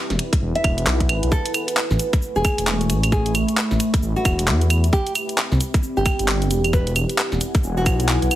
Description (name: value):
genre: UK garage, two-step garage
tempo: 133 BPM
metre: 4/4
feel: swing 61% on 16ths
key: unclear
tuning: A4 = 440 Hz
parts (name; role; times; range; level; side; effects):
- deep dark ambient pad; texture; 0.0-8.4 s; A3 to C#6; -26 LUFS; equal; chorus, built-in reverb, sidechain pumping
- dark detuned saw bass; bass; 0.1-8.3 s; E1 to E2; -21 LUFS; equal; sidechain pumping
- garage drum kit; drums; 0.1-8.4 s; cabasa, claves, handclaps, hi-hat, snare drum; -23 LUFS; right 1 dB; overdrive
- electronic kick drum; drums; 0.3-8.0 s; none; -19 LUFS; equal; overdrive
- nylon-string guitar; melody; 0.6-8.4 s; F#4 to E5; -26 LUFS; equal; ping-pong delay
room: light reverb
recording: heavily compressed radio sound, multiband compression, vinyl crackle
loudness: -17 LUFS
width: side -14 dB against mid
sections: 0.0-8.4 A section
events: none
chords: 0.0 Eadd9; 1.3 Amaj9; 4.9 Cmaj9; 6.5 Eadd9